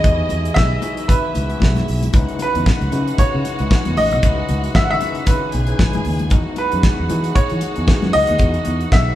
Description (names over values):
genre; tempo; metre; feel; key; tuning
disco; 115 BPM; 4/4; swing 56% on 16ths; E major; A4 = 439 Hz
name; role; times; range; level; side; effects
clear baby grand piano; melody; 0.0-9.2 s; B4 to F#5; -21 LUFS; right 1 dB; none
warm symphonic violin section; second line; 0.0-9.2 s; E4 to G#5; -29 LUFS; equal; none
overdriven tine electric piano; accompaniment; 0.0-9.2 s; C#3 to B4; -27 LUFS; left 4 dB; fast tremolo
mellow French horn section; sustained chords; 0.0-9.2 s; C#3 to G#4; -33 LUFS; right 3 dB; none
fingered electric bass; bass; 0.0-9.1 s; G#1 to E3; -21 LUFS; equal; none
damped 70s drum kit; drums; 0.0-9.1 s; hi-hat, kick drum, snare drum; -17 LUFS; equal; none
congas; percussion; 0.0-9.1 s; none; -29 LUFS; left 3 dB; none
room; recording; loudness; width
moderate large studio reverb, RT60 1.2 s; band playing live in one room; -15 LUFS; side -13 dB against mid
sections
0.0-9.2 A section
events
none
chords
0.0 Emaj7; 2.1 C#m7; 6.3 Emaj7